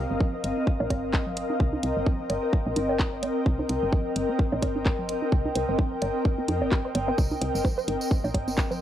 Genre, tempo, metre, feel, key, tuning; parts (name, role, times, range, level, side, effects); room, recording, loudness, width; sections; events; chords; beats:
minimal techno; 129 BPM; 4/4; swing 56% on 16ths; C minor; A4 = 439 Hz
woody FM bass; bass; 0.0-8.8 s; G1 to F2; -32 LUFS; equal; sidechain pumping
ethereal airy pad; texture; 0.0-8.8 s; C4 to G5; -28 LUFS; left 1 dB; ensemble chorus, built-in reverb, sidechain pumping, cassette tape
resonant blip pluck; riff; 0.1-8.8 s; C4 to C5; -33 LUFS; right 2 dB; chorus, phaser, sidechain pumping, cassette tape, analog delay
electronic kick drum; drums; 0.2-8.7 s; -24 LUFS; equal; small room ambience, cassette tape
congas and bongos; percussion; 0.2-8.8 s; -34 LUFS; right 3 dB; small room ambience, cassette tape, analog delay
garage drum kit; drums; 0.4-8.7 s; handclaps, hi-hat; -32 LUFS; equal; small room ambience, cassette tape
tambourine; percussion; 7.2-8.8 s; -40 LUFS; right 2 dB
moderate studio reverb, RT60 0.6 s; home recording on cassette; -24 LUFS; side -11 dB against mid
0.0-8.8 A section
filter sweep on synth arpeggio sound 0.0-8.8
0.0 Cm7
0.20 0.67 1.14 | 1.60 2.06 2.53 3.00 | 3.46 3.93 4.39 4.86 | 5.32 5.79 6.25 6.72 | 7.18 7.65 8.11 8.58